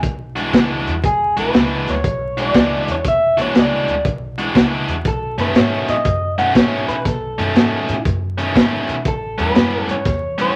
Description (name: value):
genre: electric blues shuffle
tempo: 120 BPM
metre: 4/4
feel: swing 67% on 8ths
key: E mixolydian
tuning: A4 = 440 Hz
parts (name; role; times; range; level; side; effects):
- upright bass; bass; 0.0-10.5 s; E1 to B2; -28 LUFS; equal; none
- crunchy breakbeat drum kit; drums; 0.0-10.5 s; hi-hat, kick drum, snare drum; -19 LUFS; equal; none
- overdriven electric guitar; riff; 0.4-10.6 s; A2 to F#4; -24 LUFS; equal; none
- electric guitar through a small old amp; melody; 1.1-10.6 s; G#4 to F#5; -22 LUFS; equal; none
room: moderate club reverb, RT60 0.8 s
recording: vinyl crackle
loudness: -17 LUFS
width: mono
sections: 0.0-10.6 A section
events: none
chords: 0.0 E9; 5.0 B9; 9.1 A9